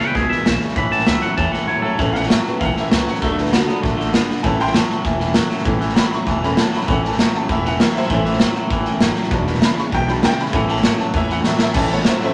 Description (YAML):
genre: rockabilly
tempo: 197 BPM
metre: 4/4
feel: straight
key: A major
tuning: A4 = 441 Hz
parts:
  - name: twangy electric guitar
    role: melody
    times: 0.0-2.0 s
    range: G#4 to B5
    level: -23 LUFS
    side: equal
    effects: spring reverb
  - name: picked steel-string acoustic guitar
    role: accompaniment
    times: 0.0-12.3 s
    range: E2 to F#4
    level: -31 LUFS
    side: equal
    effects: none
  - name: tack piano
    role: accompaniment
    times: 0.0-12.3 s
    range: E3 to C#6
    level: -26 LUFS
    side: equal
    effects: none
  - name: twangy electric guitar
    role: riff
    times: 0.0-12.3 s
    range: E2 to B3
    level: -25 LUFS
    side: equal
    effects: spring reverb
  - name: upright bass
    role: bass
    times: 0.0-12.2 s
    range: E1 to E2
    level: -28 LUFS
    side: equal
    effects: none
  - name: raw garage drum kit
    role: drums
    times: 0.0-12.2 s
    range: crash cymbal, hi-hat, kick drum, snare drum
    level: -21 LUFS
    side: equal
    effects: none
room: moderate studio reverb, RT60 0.9 s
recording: none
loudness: -18 LUFS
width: mono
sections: 0.0-2.0 A section; 2.0-11.8 B section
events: honky-tonk piano solo 2.0-12.3; drum fill 11.4-11.8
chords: 0.0 E7; 0.8 A; 3.2 D; 4.4 A; 9.3 E7; 10.5 A